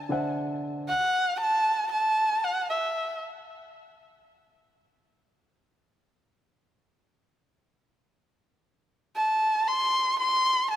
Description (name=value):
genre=amapiano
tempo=free time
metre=none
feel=none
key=unclear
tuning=A4 = 437 Hz
part: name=dark erhu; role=melody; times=0.0-3.2, 9.2-10.8 s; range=E5 to C6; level=-24 LUFS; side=equal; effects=ping-pong delay
part: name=warm grand piano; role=accompaniment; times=0.0-0.9 s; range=D3 to F#5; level=-29 LUFS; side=equal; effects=none
room=light reverb, small room ambience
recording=none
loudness=-24 LUFS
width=side -12 dB against mid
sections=0.9-10.8 A section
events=drop 0.9-10.8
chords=0.0 D7; 0.9 N.C.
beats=free time